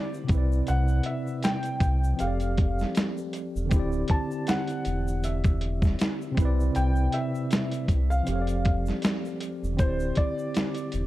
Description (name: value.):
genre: lo-fi hip hop.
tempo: 79 BPM.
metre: 4/4.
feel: swing 56% on 16ths.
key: unclear.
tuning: A4 = 440 Hz.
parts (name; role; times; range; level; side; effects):
felt-muted upright piano; melody; 0.0-11.1 s; C5 to A5; -34 LUFS; equal; none.
tine electric piano; accompaniment; 0.0-11.1 s; C3 to D5; -30 LUFS; equal; medium stereo tremolo.
tube shaker; percussion; 0.1-11.1 s; none; -54 LUFS; left 5 dB; none.
sub bass with octave; bass; 0.3-11.1 s; D1 to C2; -26 LUFS; equal; none.
dusty soul sampler-style drum kit; drums; 0.3-11.1 s; hi-hat, kick drum, snare drum; -26 LUFS; equal; overdrive, vintage 12-bit sampler grit.
room: light reverb.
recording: dark, warm production.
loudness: -24 LUFS.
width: side -16 dB against mid.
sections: 0.0-11.1 A section.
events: none.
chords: 0.3 Cmaj9; 2.2 F69; 3.7 D9sus4; 6.4 Cmaj9; 8.3 F69; 9.8 D9sus4.